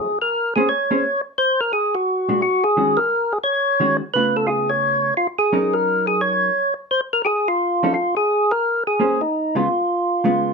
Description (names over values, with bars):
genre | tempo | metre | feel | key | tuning
jazz | 174 BPM | 4/4 | swing 63% on 8ths | Bb minor | A4 = 441 Hz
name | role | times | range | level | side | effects
percussive tonewheel organ | melody | 0.0-10.5 s | Eb4 to Db5 | -18 LUFS | equal | overdrive, slow rotary speaker
hollow-body jazz guitar | accompaniment | 0.6-10.5 s | Bb2 to C5 | -22 LUFS | right 1 dB | none
room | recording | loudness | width
light reverb | none | -17 LUFS | side -4 dB against mid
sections
0.0-10.5 A section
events
none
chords
0.0 Bbm9; 1.4 N.C.; 2.1 Bbaug7; 2.8 Ebm7; 4.1 Dbaug7; 5.5 Gb6; 6.9 N.C.; 7.6 F7b13; 8.3 Bbm9; 9.7 Db7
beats
| 0.00 0.34 0.69 1.04 | 1.38 1.73 2.07 2.42 | 2.77 3.11 3.46 3.80 | 4.15 4.49 4.84 5.18 | 5.53 5.88 6.22 6.57 | 6.91 7.26 7.61 7.95 | 8.30 8.64 8.99 9.33 | 9.68 10.03 10.37